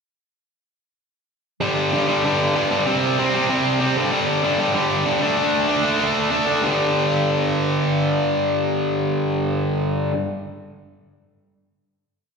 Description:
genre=punk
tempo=191 BPM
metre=4/4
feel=straight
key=unclear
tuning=A4 = 440 Hz
part: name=distorted electric guitar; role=solo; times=1.6-10.2 s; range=G2 to D4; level=-18 LUFS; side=equal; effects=overdrive, slapback echo
room=light reverb, digital ambience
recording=live gig heard through the venue's PA, recital hall reverb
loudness=-18 LUFS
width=side -5 dB against mid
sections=1.6-6.6 verse; 6.6-9.2 final chord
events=none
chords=1.6 G5; 2.9 C5; 4.0 G5; 5.2 D5; 6.6 G5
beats=| 1.60 1.92 2.23 2.55 | 2.86 3.18 3.49 3.81 | 4.12 4.43 4.75 5.06 | 5.38 5.69 6.00 6.32 | 6.63 6.95 7.26 7.58 | 7.89 8.21 8.53 8.84

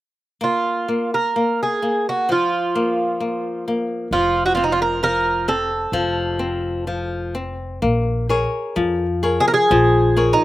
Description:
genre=fado-style ballad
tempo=65 BPM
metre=2/4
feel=rubato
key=Bb minor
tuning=A4 = 440 Hz
part: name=Irish bouzouki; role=melody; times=0.4-10.4 s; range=Eb4 to Bb4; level=-19 LUFS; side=right 2 dB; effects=slapback echo
part: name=flamenco guitar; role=accompaniment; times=0.4-10.4 s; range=F3 to Db5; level=-21 LUFS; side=left 2 dB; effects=slapback echo
part: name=upright bass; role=bass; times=4.1-10.3 s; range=F1 to F2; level=-24 LUFS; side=equal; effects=none
room=little or no reverb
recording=recorded outdoors, with no room sound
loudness=-17 LUFS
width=side -15 dB against mid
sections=0.4-7.8 A section; 7.8-10.4 B section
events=none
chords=0.4 Bb5; 4.1 F5; 7.8 Bbm7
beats=| 0.41 1.36 | 2.29 3.21 | 4.12 5.02 | 5.92 6.87 | 7.83 8.77 | 9.70

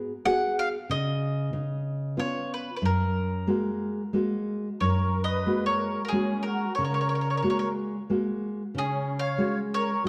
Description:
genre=italian folk, Italian serenade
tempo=92 BPM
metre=3/4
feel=straight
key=F# major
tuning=A4 = 441 Hz
part: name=nylon-string guitar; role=accompaniment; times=0.0-10.1 s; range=F#2 to G#4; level=-29 LUFS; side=equal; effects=none
part: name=mandolin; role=melody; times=0.3-10.0 s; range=G#4 to F#5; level=-32 LUFS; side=equal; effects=none
part: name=musette accordion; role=second line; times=4.8-10.1 s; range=C#4 to C#5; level=-35 LUFS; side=equal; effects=none
room=wet recital hall reverb, RT60 1.7 s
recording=dark, warm production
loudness=-28 LUFS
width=mono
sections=0.0-4.8 A section; 4.8-10.1 B section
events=none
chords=0.0 G#m7; 0.9 N.C.; 1.5 C#7; 2.8 F#add9; 8.7 C#sus4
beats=0.25 | 0.89 1.53 2.18 | 2.83 3.49 4.15 | 4.82 5.48 6.13 | 6.78 7.43 8.09 | 8.74 9.39 10.04

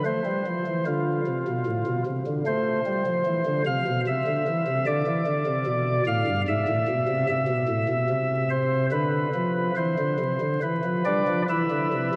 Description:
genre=classical, chorale-style piece for pipe organ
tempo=74 BPM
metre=3/4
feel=uneven beats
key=A minor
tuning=A4 = 442 Hz
part: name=pipe organ, flutes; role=solo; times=0.0-12.2 s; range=G2 to F5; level=-25 LUFS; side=equal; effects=none
room=wet cathedral reverb, RT60 7.1 s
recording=vinyl crackle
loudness=-25 LUFS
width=mono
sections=0.0-12.2 A section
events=none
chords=0.1 F; 2.5 Am; 4.1 C; 4.9 G13; 6.5 E/G#; 7.3 Am; 8.9 Bdim/D; 9.8 E5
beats=| 0.05 0.86 1.67 | 2.46 3.25 4.06 | 4.87 5.67 6.47 | 7.29 8.11 8.93 | 9.78 10.63 11.49

